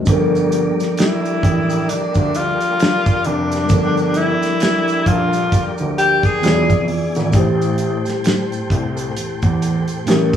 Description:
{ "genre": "R&B, neo-soul", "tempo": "66 BPM", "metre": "4/4", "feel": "swing 59% on 16ths", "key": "G dorian", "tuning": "A4 = 440 Hz", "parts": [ { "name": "mellow tine electric piano", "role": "accompaniment", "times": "0.0-10.4 s", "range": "A2 to D5", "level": "-20 LUFS", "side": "equal", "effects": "medium stereo tremolo" }, { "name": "tonewheel organ", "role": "sustained chords", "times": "0.1-10.4 s", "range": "E3 to G#4", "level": "-28 LUFS", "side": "equal", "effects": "slow rotary speaker, chorus vibrato" }, { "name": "dark grand piano", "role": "bass", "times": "0.1-10.4 s", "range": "E1 to E2", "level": "-22 LUFS", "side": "right 1 dB", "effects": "none" }, { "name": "damped 70s drum kit", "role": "drums", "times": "0.1-10.4 s", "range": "hi-hat, kick drum, snare drum", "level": "-18 LUFS", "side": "equal", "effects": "none" }, { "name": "maracas and finger snaps", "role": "percussion", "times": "0.1-10.4 s", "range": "none", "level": "-36 LUFS", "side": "right 3 dB", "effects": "none" }, { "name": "breathy tenor saxophone", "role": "melody", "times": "1.0-6.9 s", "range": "D4 to Ab4", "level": "-18 LUFS", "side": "left 1 dB", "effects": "none" } ], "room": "moderate large studio reverb, RT60 1.2 s", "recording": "band playing live in one room, studio ambience", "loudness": "-15 LUFS", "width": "side -9 dB against mid", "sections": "0.1-10.4 A section", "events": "none", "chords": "0.1 Gm7; 6.4 E7b9; 7.3 Am7", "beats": "| 0.07 0.98 1.89 2.79 | 3.70 4.61 5.52 6.43 | 7.34 8.25 9.16 10.07" }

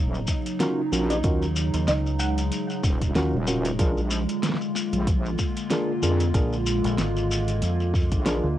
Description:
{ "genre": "glitch hop", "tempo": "94 BPM", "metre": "4/4", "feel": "swing 56% on 16ths", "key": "Eb minor", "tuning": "A4 = 440 Hz", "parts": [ { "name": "warbly tape-like pad", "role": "sustained chords", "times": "0.0-8.6 s", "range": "Db3 to F4", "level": "-28 LUFS", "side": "equal", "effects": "chorus, built-in reverb, phaser, vintage 12-bit sampler grit, sidechain pumping" }, { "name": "wobble bass", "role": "bass", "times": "0.0-8.4 s", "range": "Eb1 to F2", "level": "-26 LUFS", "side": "equal", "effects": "chorus, tube saturation" }, { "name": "shekere", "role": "percussion", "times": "0.1-8.4 s", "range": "none", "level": "-35 LUFS", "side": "left 3 dB", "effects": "none" }, { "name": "electronic kick drum", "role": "drums", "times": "0.3-8.2 s", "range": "none", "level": "-24 LUFS", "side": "equal", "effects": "cassette tape" }, { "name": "pop drum kit", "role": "drums", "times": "0.5-8.4 s", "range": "hi-hat, snare drum", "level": "-29 LUFS", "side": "equal", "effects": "cassette tape" }, { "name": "tine electric piano", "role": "stabs", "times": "0.6-8.5 s", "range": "Db4 to Bb4", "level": "-28 LUFS", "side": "equal", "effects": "sidechain pumping, analog delay" }, { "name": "woody wave-folded pluck", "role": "melody", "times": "1.1-2.7 s", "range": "Eb5 to Gb5", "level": "-31 LUFS", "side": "equal", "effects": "ensemble chorus, cassette tape, analog delay" }, { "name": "deep dub fingered electric bass", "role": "bass", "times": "1.2-8.6 s", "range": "Ab1 to F2", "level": "-25 LUFS", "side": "equal", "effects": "none" } ], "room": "moderate booth ambience, RT60 0.3 s", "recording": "home recording on cassette", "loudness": "-22 LUFS", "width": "side -13 dB against mid", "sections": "0.0-8.6 A section", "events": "none", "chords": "0.0 Ebm7; 3.8 Bb7", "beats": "0.60 | 1.24 1.88 2.52 3.15 | 3.79 4.43 5.07 5.71 | 6.35 6.98 7.62 8.26" }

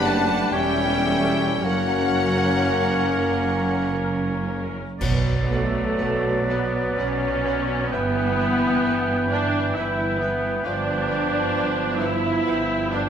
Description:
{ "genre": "classical, slow romantic movement for symphony orchestra", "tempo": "49-68 BPM", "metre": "3/4", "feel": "rubato", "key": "B minor", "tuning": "A4 = 440 Hz", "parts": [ { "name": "warm symphonic violin section", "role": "melody", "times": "0.0-13.0 s", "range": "E5 to A5", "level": "-31 LUFS", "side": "left 4 dB", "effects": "none" }, { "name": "dark clarinet", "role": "second line", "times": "0.0-13.1 s", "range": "C#4 to B4", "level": "-30 LUFS", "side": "left 1 dB", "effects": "none" }, { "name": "hollow flute section", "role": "second line", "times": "0.0-13.1 s", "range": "A4 to A5", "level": "-31 LUFS", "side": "left 2 dB", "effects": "none" }, { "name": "rich symphonic violin section", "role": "second line", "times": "0.0-13.0 s", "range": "B4 to F#5", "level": "-35 LUFS", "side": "left 3 dB", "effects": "none" }, { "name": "warm oboe", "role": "second line", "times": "0.0-13.1 s", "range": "B4 to G5", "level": "-30 LUFS", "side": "equal", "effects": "none" }, { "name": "rich symphonic viola section", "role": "accompaniment", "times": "0.0-13.1 s", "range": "A3 to A#4", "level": "-26 LUFS", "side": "right 1 dB", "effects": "none" }, { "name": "warm bassoon", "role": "accompaniment", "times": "0.0-13.1 s", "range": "E3 to A#3", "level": "-29 LUFS", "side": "right 2 dB", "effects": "none" }, { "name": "warm French horn section", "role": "sustained chords", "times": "0.0-13.1 s", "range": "E3 to B3", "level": "-30 LUFS", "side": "left 3 dB", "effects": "none" }, { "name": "mellow tuba", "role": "bass", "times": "0.0-4.8 s", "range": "E1 to F#1", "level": "-30 LUFS", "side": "right 3 dB", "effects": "none" }, { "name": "rich symphonic cello section", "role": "bass", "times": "0.0-13.1 s", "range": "E2 to B2", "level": "-30 LUFS", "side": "right 2 dB", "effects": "none" }, { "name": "warm symphonic double bass section", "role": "bass", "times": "0.0-13.1 s", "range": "E1 to B1", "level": "-30 LUFS", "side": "right 3 dB", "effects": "none" }, { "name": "clash cymbals and concert bass drum", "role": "percussion", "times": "5.0-6.9 s", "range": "none", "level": "-29 LUFS", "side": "equal", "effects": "none" } ], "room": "moderate scoring stage reverb, RT60 1.4 s", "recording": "none", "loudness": "-20 LUFS", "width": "side -8 dB against mid", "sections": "0.0-5.0 A section; 5.0-13.1 B section", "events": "band accent 5.0-6.0", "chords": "0.0 G; 0.5 C#dim/E; 1.6 F#; 5.0 Bm; 7.9 Em/G; 10.7 G7", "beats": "0.52 | 1.64 2.83 3.94 | 5.00 5.99 6.96 | 7.92 8.86 9.77 | 10.66 11.56 12.47" }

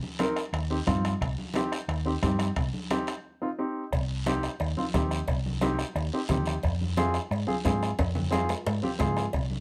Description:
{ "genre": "latin, cumbia", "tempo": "177 BPM", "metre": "4/4", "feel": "straight", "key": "C minor", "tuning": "A4 = 439 Hz", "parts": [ { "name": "congas", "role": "percussion", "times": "0.0-9.6 s", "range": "none", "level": "-37 LUFS", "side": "equal", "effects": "none" }, { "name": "warm upright piano", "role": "accompaniment", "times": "0.2-9.2 s", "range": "C4 to Bb4", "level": "-32 LUFS", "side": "equal", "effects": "none" }, { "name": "bombo", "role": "percussion", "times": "0.2-9.5 s", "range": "none", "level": "-35 LUFS", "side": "equal", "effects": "none" }, { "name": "guiro", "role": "percussion", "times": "0.2-9.6 s", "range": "none", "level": "-45 LUFS", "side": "equal", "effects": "none" }, { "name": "timbales and cowbell", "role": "percussion", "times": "0.2-9.5 s", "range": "none", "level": "-40 LUFS", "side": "equal", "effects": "none" }, { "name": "hollow-body short-scale fingered electric bass", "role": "bass", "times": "0.5-9.6 s", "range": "C2 to Ab2", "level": "-32 LUFS", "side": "equal", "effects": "none" } ], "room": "light reverb", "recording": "none", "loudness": "-29 LUFS", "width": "mono", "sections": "0.0-3.9 A section; 3.9-9.6 B section", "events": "break 3.3-3.9; drum fill 8.0-9.3", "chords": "0.0 Cm; 6.6 Fm", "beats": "0.20 0.54 0.88 | 1.22 1.56 1.90 2.23 | 2.57 2.91 3.25 3.59 | 3.93 4.27 4.61 4.94 | 5.28 5.62 5.96 6.30 | 6.64 6.97 7.31 7.65 | 7.99 8.33 8.66 9.00 | 9.34" }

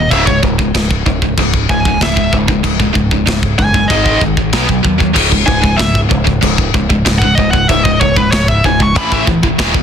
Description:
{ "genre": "heavy metal", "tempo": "95 BPM", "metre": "4/4", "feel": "straight", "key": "C# minor", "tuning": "A4 = 442 Hz", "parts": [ { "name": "high-gain lead guitar", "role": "melody", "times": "0.0-9.2 s", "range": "B4 to C#6", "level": "-16 LUFS", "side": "equal", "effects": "distortion, ping-pong delay" }, { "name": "tight distorted guitar", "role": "riff", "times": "0.0-9.8 s", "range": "C#2 to B3", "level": "-14 LUFS", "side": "equal", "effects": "distortion" }, { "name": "growling fingered electric bass", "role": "bass", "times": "0.0-9.8 s", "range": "C#1 to D#2", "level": "-18 LUFS", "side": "equal", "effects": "overdrive" }, { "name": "tight metal drum kit", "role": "drums", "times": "0.1-9.8 s", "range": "china cymbal, crash cymbal, kick drum, snare drum", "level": "-15 LUFS", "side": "equal", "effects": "none" } ], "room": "little or no reverb", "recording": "dense, heavily limited modern master", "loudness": "-10 LUFS", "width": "side -8 dB against mid", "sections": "0.0-9.8 A section", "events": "lead electric guitar solo 0.0-9.8", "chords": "0.1 C#5; 3.9 G#5; 4.5 B5; 5.2 C#5; 9.0 A5", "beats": "| 0.12 0.75 1.38 2.01 | 2.64 3.27 3.90 4.54 | 5.17 5.80 6.43 7.06 | 7.69 8.32 8.96 9.59" }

